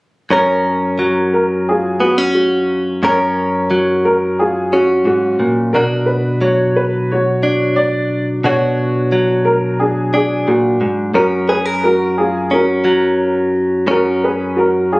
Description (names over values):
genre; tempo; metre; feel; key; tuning
folk; 89 BPM; 4/4; straight; F# major; A4 = 440 Hz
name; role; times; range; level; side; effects
warm upright piano; melody; 0.3-15.0 s; D4 to D5; -16 LUFS; equal; none
direct-recorded clean electric guitar; accompaniment; 0.3-15.0 s; F#2 to A#4; -15 LUFS; equal; none
room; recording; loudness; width
light reverb; recorded on a phone in the room, studio ambience; -13 LUFS; side -23 dB against mid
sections
0.3-11.1 A section; 11.1-15.0 B section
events
none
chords
0.3 F#maj7; 5.7 Bmadd9; 11.1 F#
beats
| 0.31 0.99 1.67 2.34 | 3.02 3.70 4.37 5.05 | 5.72 6.40 7.08 7.75 | 8.43 9.11 9.79 10.46 | 11.14 11.82 12.50 13.18 | 13.86 14.53